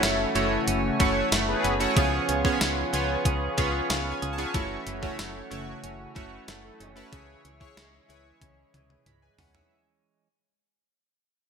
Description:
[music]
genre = 1980s-style pop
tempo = 93 BPM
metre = 4/4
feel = straight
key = unclear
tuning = A4 = 440 Hz
[part]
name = chorused retro synth keys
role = accompaniment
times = 0.0-9.9 s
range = C#3 to B5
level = -27 LUFS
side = right 1 dB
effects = none
[part]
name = warm analog pad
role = sustained chords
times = 0.0-9.7 s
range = A3 to C#6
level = -37 LUFS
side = left 2 dB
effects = chorus
[part]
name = direct-recorded clean electric guitar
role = riff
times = 0.0-10.3 s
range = E3 to G#4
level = -35 LUFS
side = right 4 dB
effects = analog chorus, digital delay
[part]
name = mellow synth brass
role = stabs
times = 0.0-6.9 s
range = C#3 to B4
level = -34 LUFS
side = left 3 dB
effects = chorus
[part]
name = solid FM bass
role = bass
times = 0.0-9.6 s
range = F#1 to C#2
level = -33 LUFS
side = left 1 dB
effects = none
[part]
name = clean 12-bit digital drum machine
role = drums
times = 0.0-9.7 s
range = hi-hat, kick drum, snare drum, tambourine, toms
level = -28 LUFS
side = equal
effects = gated reverb
[sound]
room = wet plate reverb, RT60 1.9 s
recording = bright 1980s-style digital production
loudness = -23 LUFS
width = side -6 dB against mid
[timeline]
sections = 0.0-9.7 A section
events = fade-out 0.0-9.7; synth keys fill 3.6-4.5; drum fill 8.4-9.7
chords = 0.0 F#m7; 2.0 C#7; 4.5 F#m7; 7.1 C#m

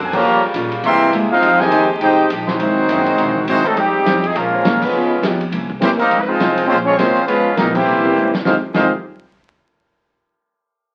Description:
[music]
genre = jazz, big band swing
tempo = 205 BPM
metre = 4/4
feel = swing 60% on 8ths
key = F minor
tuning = A4 = 444 Hz
[part]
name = archtop guitar, miked and amplified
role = accompaniment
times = 0.0-8.9 s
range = Ab2 to C5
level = -27 LUFS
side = equal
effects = none
[part]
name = edgy saxophone section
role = sustained chords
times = 0.0-3.8 s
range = C3 to G4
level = -26 LUFS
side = equal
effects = none
[part]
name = upright bass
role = bass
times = 0.0-8.9 s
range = Fb1 to C3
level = -30 LUFS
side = equal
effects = none
[part]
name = bright trumpet section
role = melody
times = 0.1-8.9 s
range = Gb3 to C6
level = -19 LUFS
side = equal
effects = none
[part]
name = clear trombone section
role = second line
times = 0.1-8.9 s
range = F2 to G4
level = -21 LUFS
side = equal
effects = none
[part]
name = vintage drum kit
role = drums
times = 0.1-8.8 s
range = crash cymbal, hi-hat, kick drum, ride cymbal, snare drum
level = -27 LUFS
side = equal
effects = none
[part]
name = warm grand piano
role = accompaniment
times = 4.5-8.9 s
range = Ab3 to C5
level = -26 LUFS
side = equal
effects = none
[sound]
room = wet studio reverb, RT60 0.6 s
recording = very old 78 rpm record, vinyl crackle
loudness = -16 LUFS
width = mono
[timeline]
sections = 0.0-3.8 A section; 3.8-8.5 B section; 8.5-9.6 C section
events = band accent 0.1, 4.8, 7.7; drum fill 8.2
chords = 0.2 Gm7b5; 0.8 C7b13; 1.4 Fm9; 2.6 Ab7b13; 3.8 Dbmaj9; 4.3 Bbm9; 4.9 Db7; 5.5 C7b9; 6.1 Dbmaj9; 6.7 Bbm9; 7.3 Db7; 7.9 C7b9; 8.5 Fm9

